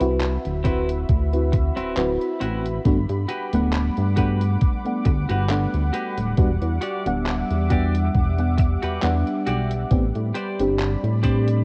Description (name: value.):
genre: vaporwave.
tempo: 68 BPM.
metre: 4/4.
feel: swing 55% on 16ths.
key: unclear.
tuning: A4 = 441 Hz.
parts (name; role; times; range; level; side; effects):
mellow FM electric piano; accompaniment; 0.0-11.6 s; G3 to F#5; -28 LUFS; equal; phaser, analog chorus, analog delay.
lush unison pad; sustained chords; 0.1-11.6 s; G3 to D6; -34 LUFS; equal; chorus.
chorused synth bass; bass; 0.0-11.6 s; D1 to A2; -25 LUFS; equal; none.
detuned 8-bit digital drum machine; drums; 0.0-11.6 s; handclaps, hi-hat; -36 LUFS; equal; small room ambience.
clean electric guitar; riff; 0.6-11.5 s; C4 to D5; -34 LUFS; equal; lush chorus, analog delay.
electronic kick drum; drums; 0.6-11.4 s; none; -23 LUFS; equal; small room ambience.
room: light reverb.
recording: worn, warbling old tape, cassette tape, warbly pitch drift.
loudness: -22 LUFS.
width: mono.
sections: 0.0-11.6 A section.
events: none.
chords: 0.0 D13; 2.9 Gmaj7; 6.4 Em9; 9.9 Am11.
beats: 0.21 1.09 1.98 | 2.86 3.74 4.62 5.50 | 6.39 7.27 8.15 9.03 | 9.92 10.80.